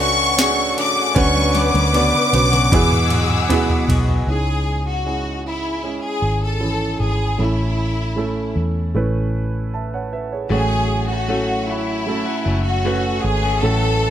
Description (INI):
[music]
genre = pop ballad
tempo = 77 BPM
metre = 4/4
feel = straight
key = unclear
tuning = A4 = 440 Hz
[part]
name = clear symphonic violin section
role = melody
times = 0.0-14.1 s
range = E4 to D6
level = -21 LUFS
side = left 1 dB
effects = none
[part]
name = warm grand piano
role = accompaniment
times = 0.0-14.1 s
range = G#2 to A5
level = -22 LUFS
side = right 3 dB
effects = none
[part]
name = warm studio string section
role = sustained chords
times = 0.0-4.3 s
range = F#4 to E6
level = -26 LUFS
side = left 3 dB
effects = none
[part]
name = direct-recorded clean electric guitar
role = arpeggios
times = 0.0-4.3, 10.5-14.1 s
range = E2 to F#4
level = -27 LUFS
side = left 8 dB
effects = lush chorus
[part]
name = vintage muted fingered electric bass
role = bass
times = 0.0-14.1 s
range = F#1 to E2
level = -21 LUFS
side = equal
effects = none
[part]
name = smooth R&B drum kit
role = drums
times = 0.4-4.3 s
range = kick drum, ride cymbal, snare drum, toms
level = -22 LUFS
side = equal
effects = none
[sound]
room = studio reverb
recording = none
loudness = -16 LUFS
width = side -10 dB against mid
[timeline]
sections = 0.0-4.3 A section; 4.3-14.1 B section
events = drum fill 1.2-4.3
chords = 0.0 Dmaj7; 1.2 Bmadd9/D; 2.7 Eadd9; 4.3 C#m; 7.4 A; 10.5 F#m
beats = 0.38 | 1.16 1.94 2.72 3.50 | 4.28 5.06 5.84 6.62 | 7.39 8.17 8.95 9.73 | 10.51 11.29 12.07 12.85 | 13.63